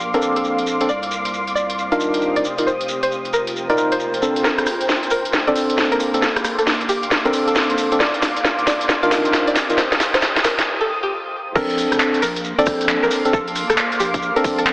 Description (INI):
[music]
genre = UK garage, two-step garage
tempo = 135 BPM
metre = 4/4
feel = swing 64% on 16ths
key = Bb major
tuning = A4 = 441 Hz
[part]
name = saturated sub bass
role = bass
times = 0.0-4.4, 11.6-14.7 s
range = F1 to C2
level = -34 LUFS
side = equal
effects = none
[part]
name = shekere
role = percussion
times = 0.0-14.7 s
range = none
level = -31 LUFS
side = equal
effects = none
[part]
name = granular cloud pad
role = texture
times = 0.0-14.7 s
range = Bb3 to Eb6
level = -24 LUFS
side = equal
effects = built-in reverb, sidechain pumping
[part]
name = string-like resonator pluck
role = melody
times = 0.1-14.7 s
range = G4 to F5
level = -23 LUFS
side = equal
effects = chorus, digital delay
[part]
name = tine electric piano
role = stabs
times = 0.1-14.7 s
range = C4 to Bb4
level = -20 LUFS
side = equal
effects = low-pass filter
[part]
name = garage drum kit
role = drums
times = 0.1-14.7 s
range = crash cymbal, handclaps, hi-hat, rim click, snare drum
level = -20 LUFS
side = equal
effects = high-pass filter on hats, high-pass filter on snare, high-pass filter on cymbals, high-pass filter on room
[part]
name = electronic kick drum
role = drums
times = 11.6-14.6 s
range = none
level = -25 LUFS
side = equal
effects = none
[sound]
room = wet lush hall reverb, RT60 2.1 s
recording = heavily compressed radio sound, high-pass filter, AM radio sound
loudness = -16 LUFS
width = side -24 dB against mid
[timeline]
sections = 0.0-4.4 A section; 4.4-11.6 B section; 11.6-14.7 C section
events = build-up 4.4-11.6; drum fill 4.4-10.7; break 10.7-11.6; drop 11.6-14.7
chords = 0.0 Bbmaj9; 0.9 Cm11; 2.4 F7sus4; 4.4 Bbmaj9; 8.0 Cm11; 9.6 F7sus4; 11.6 Bbmaj9